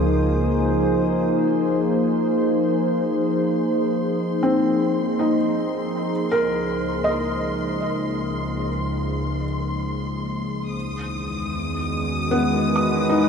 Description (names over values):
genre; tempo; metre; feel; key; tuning
ambient; 77 BPM; 3/4; straight; unclear; A4 = 440 Hz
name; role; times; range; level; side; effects
warbly tape-like pad; sustained chords; 0.0-13.3 s; Db2 to C5; -21 LUFS; equal; chorus, built-in reverb
felt-muted upright piano; arpeggios; 0.0-13.3 s; B3 to D#6; -24 LUFS; equal; diffuse ambient delay
rich symphonic double bass section; bass; 0.0-1.4 s; Db2; -25 LUFS; equal; none
rich studio violin section; texture; 0.0-13.3 s; C6 to Eb6; -33 LUFS; left 1 dB; none
room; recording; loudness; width
wet huge ambient reverb, RT60 8.1 s; dark, warm production; -20 LUFS; side -6 dB against mid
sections
0.0-1.5 A section; 1.5-13.3 B section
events
fade-in on violin section 1.5-13.3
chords
0.0 Db; 1.5 Fm7; 6.1 Db; 10.7 Emaj7